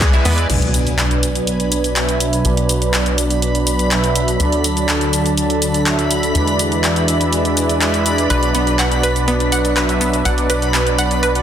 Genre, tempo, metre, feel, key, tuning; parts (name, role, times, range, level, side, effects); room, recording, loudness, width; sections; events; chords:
progressive house; 123 BPM; 4/4; straight; B dorian; A4 = 440 Hz
wide unison pluck; arpeggios; 0.0-0.3, 8.3-11.3 s; B3 to F#5; -22 LUFS; right 1 dB; sidechain pumping, dub echo
soft supersaw; stabs; 0.0-11.4 s; B2 to E5; -19 LUFS; right 2 dB; sidechain pumping, low-pass filter, dub echo
tight sequencer bass; bass; 0.0-11.4 s; B1 to E2; -21 LUFS; left 1 dB; sidechain pumping
house drum kit; drums; 0.0-11.4 s; crash cymbal, handclaps, hi-hat, shaker; -21 LUFS; left 1 dB; overdrive
backwards swelling texture; texture; 0.0-11.4 s; G#5 to B5; -26 LUFS; left 1 dB; built-in reverb, sidechain pumping
airy breathy pad; sustained chords; 0.5-11.4 s; D3 to A5; -22 LUFS; equal; chorus, sidechain pumping
impact; sound effects; 0.5-2.4 s; -22 LUFS; left 1 dB
moderate lush hall reverb, RT60 1.5 s; dense, heavily limited modern master; -14 LUFS; side -9 dB against mid
0.5-11.4 A section
band accent 0.0; impact 0.5-2.4; filter sweep on supersaw synth 0.5-11.4; filter sweep on analog synth pad 0.5-11.4
0.5 Bm; 4.4 D; 6.4 E7; 8.3 Bm